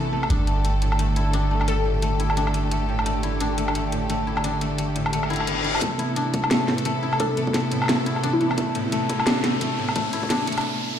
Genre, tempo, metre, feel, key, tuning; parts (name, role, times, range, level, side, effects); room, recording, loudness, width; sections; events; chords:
half-time drum and bass; 174 BPM; 4/4; swing 59% on 16ths, half-time; A minor; A4 = 441 Hz
clear symphonic string section; sustained chords; 0.0-11.0 s; C3 to A4; -27 LUFS; right 2 dB; sidechain pumping
koto; arpeggios; 0.0-11.0 s; A2 to E4; -27 LUFS; left 3 dB; low-pass filter, digital delay
long sustained 808-style bass; bass; 0.0-10.6 s; E1 to A1; -26 LUFS; equal; high-pass filter
drum and bass drum kit; drums; 0.2-10.6 s; hi-hat, snare drum, woodblock; -26 LUFS; equal; overdrive, small room ambience
glassy wavetable pluck; melody; 1.7-2.0, 7.2-8.5 s; E4 to A4; -28 LUFS; left 2 dB; chorus, dub echo
reverse cymbal and riser; sound effects; 5.2-11.0 s; -31 LUFS; left 2 dB
electronic kick drum; drums; 5.8-10.3 s; -29 LUFS; right 1 dB; high-pass filter on kick, small room ambience
moderate lush hall reverb, RT60 1.9 s; played on a big sound system in a bare room, large studio reverb; -20 LUFS; side -9 dB against mid
0.0-5.8 A section; 5.8-11.0 B section
reverse cymbal 5.2-5.8; build-up 5.8-11.0; riser 5.8-11.0; break 10.6-11.0
0.3 Gsus2; 5.8 Amadd9